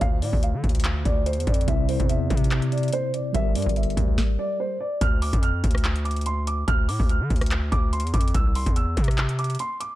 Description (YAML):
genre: hip hop, trap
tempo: 144 BPM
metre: 4/4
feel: half-time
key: D minor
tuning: A4 = 438 Hz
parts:
  - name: dark concert grand piano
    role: melody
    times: 0.0-10.0 s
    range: C5 to F6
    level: -29 LUFS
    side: right 1 dB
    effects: low-pass filter
  - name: mellow tine electric piano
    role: accompaniment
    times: 0.0-4.8 s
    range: C3 to D5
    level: -29 LUFS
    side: equal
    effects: medium stereo tremolo, low-pass filter
  - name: distorted 808-style bass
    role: bass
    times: 0.0-9.6 s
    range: G1 to D3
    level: -25 LUFS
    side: equal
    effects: distortion
  - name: booming analog drum machine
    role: drums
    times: 0.0-9.9 s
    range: handclaps, hi-hat, kick drum, rim click, snare drum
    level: -23 LUFS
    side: equal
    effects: none
room: digital ambience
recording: dark, warm production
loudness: -21 LUFS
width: side -15 dB against mid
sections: 0.0-5.0 A section; 5.0-10.0 B section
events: stop 4.2-5.0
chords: 0.0 Dm; 1.7 Cadd9; 3.3 Gm; 5.0 Dm; 8.3 C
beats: | 0.01 0.43 0.85 1.26 | 1.68 2.10 2.51 2.93 | 3.35 3.76 4.18 4.60 | 5.01 5.43 5.85 6.26 | 6.68 7.10 7.51 7.93 | 8.35 8.76 9.18 9.60